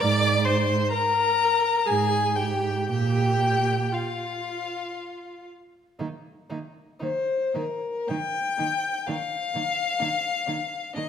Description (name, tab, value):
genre	classical, slow romantic movement for string quartet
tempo	53-67 BPM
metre	3/4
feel	rubato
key	Eb major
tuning	A4 = 441 Hz
part	rich violin	melody	0.0-11.1 s	Bb4 to D6	-25 LUFS	left 5 dB	none
part	rich violin	second line	0.0-11.0 s	D4 to D5	-32 LUFS	equal	none
part	warm viola	accompaniment	0.0-11.0 s	Bb3 to D5	-31 LUFS	right 3 dB	none
part	warm cello	bass	0.0-11.0 s	Ab2 to Eb3	-28 LUFS	right 4 dB	none
room	wet recital hall reverb, RT60 1.5 s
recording	none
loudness	-23 LUFS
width	side -8 dB against mid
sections	0.0-6.0 A section; 6.0-11.1 B section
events	none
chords	0.0 Bb9/Ab; 1.9 N.C.; 2.9 Bb5; 6.0 Eb